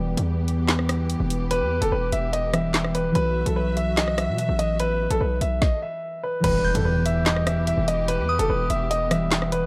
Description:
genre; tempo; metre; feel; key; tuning
hip hop, drill; 146 BPM; 4/4; half-time; E harmonic minor; A4 = 440 Hz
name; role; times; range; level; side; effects
concert harp; accompaniment; 0.0-9.7 s; E3 to B4; -30 LUFS; equal; low-pass filter
rich studio string section; sustained chords; 0.0-9.7 s; E3 to E5; -36 LUFS; equal; none
distorted 808-style bass; bass; 0.0-9.7 s; E1 to B2; -28 LUFS; equal; distortion
drill drum kit; drums; 0.2-9.6 s; crash cymbal, handclaps, hi-hat, kick drum, rim click, snare drum; -28 LUFS; equal; none
warm grand piano; melody; 1.5-9.7 s; A4 to E5; -27 LUFS; equal; low-pass filter
impact; sound effects; 6.4-8.1 s; none; -34 LUFS; equal; none
glassy synth bell; second line; 6.6-9.3 s; D#6 to G6; -33 LUFS; equal; chorus, digital delay
room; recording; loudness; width
little or no reverb; dark, warm production; -23 LUFS; mono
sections
0.0-6.4 A section; 6.4-9.7 B section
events
break 0.0-1.5; stop 5.6-6.4; impact 6.4-8.1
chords
0.0 Em; 3.2 Bsus4; 6.4 Em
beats
0.28 0.69 1.10 | 1.51 1.92 2.33 2.74 | 3.15 3.56 3.97 4.38 | 4.79 5.21 5.62 6.03 | 6.44 6.85 7.26 7.67 | 8.08 8.49 8.90 9.32

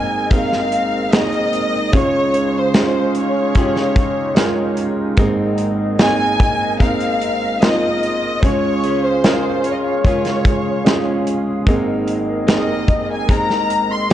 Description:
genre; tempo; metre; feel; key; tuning
pop ballad; 74 BPM; 4/4; straight; Ab major; A4 = 439 Hz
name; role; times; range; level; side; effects
warm studio violin section; melody; 0.0-14.1 s; C5 to C6; -20 LUFS; left 1 dB; none
dark upright piano; accompaniment; 0.0-14.1 s; Ab1 to Bb4; -20 LUFS; right 2 dB; none
mellow large flute ensemble; sustained chords; 0.0-14.1 s; C4 to F5; -26 LUFS; right 2 dB; none
direct-recorded clean electric guitar; arpeggios; 0.0-14.1 s; Db3 to Bb4; -27 LUFS; left 5 dB; analog delay
modern studio drum kit; drums; 0.3-14.1 s; hi-hat, kick drum, snare drum; -17 LUFS; equal; none
room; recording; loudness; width
light reverb; cassette tape; -14 LUFS; side -12 dB against mid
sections
0.0-14.1 A section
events
none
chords
0.0 Abadd9; 1.9 Db; 5.2 Abadd9; 8.4 Db; 11.7 Abadd9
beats
0.31 1.12 | 1.94 2.75 3.56 4.37 | 5.18 5.99 6.80 7.61 | 8.42 9.23 10.04 10.86 | 11.67 12.48 13.29 14.10

